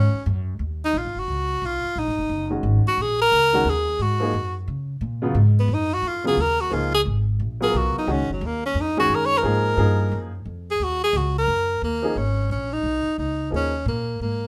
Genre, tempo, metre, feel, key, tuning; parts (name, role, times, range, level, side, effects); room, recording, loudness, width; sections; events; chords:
modal jazz; 176 BPM; 4/4; swing 65% on 8ths; G# dorian; A4 = 440 Hz
warm tenor saxophone; melody; 0.0-14.5 s; F#3 to C#5; -24 LUFS; equal
upright bass; bass; 0.0-14.5 s; F#1 to C#3; -26 LUFS; equal
warm upright piano; accompaniment; 2.5-13.7 s; C#3 to A#4; -28 LUFS; equal
moderate club reverb, RT60 0.8 s; -22 LUFS; mono
0.0-12.2 A section; 12.2-14.5 B section
tenor saxophone solo 0.0-12.2
0.0 G#9sus4; 12.2 G#sus4